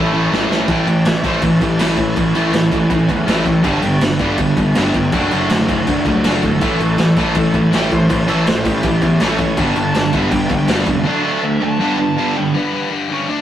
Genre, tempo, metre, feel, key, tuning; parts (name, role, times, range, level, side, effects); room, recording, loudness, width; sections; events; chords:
punk rock; 162 BPM; 4/4; straight; A mixolydian; A4 = 440 Hz
bluesy overdriven lead guitar; melody; 0.0-13.4 s; A3 to A5; -25 LUFS; equal; distortion
distorted electric guitar; riff; 0.0-13.4 s; G2 to D4; -20 LUFS; left 3 dB; overdrive
overdriven electric guitar; riff; 0.0-12.5 s; A2 to A4; -21 LUFS; equal
tight distorted guitar; riff; 0.0-12.5 s; G2 to D4; -21 LUFS; right 4 dB; distortion
fuzz picked electric bass; bass; 0.0-11.0 s; F1 to E2; -20 LUFS; equal; overdrive
raw garage drum kit; drums; 0.3-11.0 s; crash cymbal, kick drum, snare drum; -20 LUFS; equal
light reverb; rough rehearsal-room recording, tube saturation; -13 LUFS; side -11 dB against mid
0.7-12.5 A section
drum fill 0.3-0.7
0.0 A; 3.6 G; 5.1 D/F#; 6.6 A; 9.6 G; 11.1 D; 11.8 G